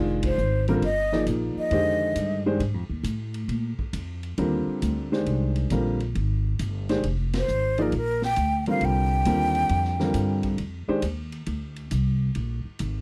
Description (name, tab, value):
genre	modal jazz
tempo	135 BPM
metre	4/4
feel	swing 67% on 8ths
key	F dorian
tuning	A4 = 440 Hz
part	warm upright piano	accompaniment	0.0-11.0 s	D3 to D5	-28 LUFS	equal	none
part	upright bass	bass	0.0-13.0 s	F1 to Bb2	-29 LUFS	equal	none
part	swinging big-band drum kit	drums	0.2-12.9 s	hi-hat, kick drum, ride cymbal, snare drum	-40 LUFS	equal	none
part	breathy hollow jazz flute	melody	0.3-2.4, 7.4-10.5 s	Bb4 to G5	-28 LUFS	equal	none
room	light reverb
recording	none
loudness	-25 LUFS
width	mono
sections	0.0-13.0 A section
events	band accent 0.2, 7.3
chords	0.0 F9sus4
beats	0.39 0.83 1.27 | 1.72 2.16 2.60 3.05 | 3.49 3.94 4.38 4.82 | 5.27 5.71 6.16 6.60 | 7.04 7.49 7.93 8.37 | 8.81 9.26 9.70 10.14 | 10.59 11.03 11.47 11.91 | 12.36 12.80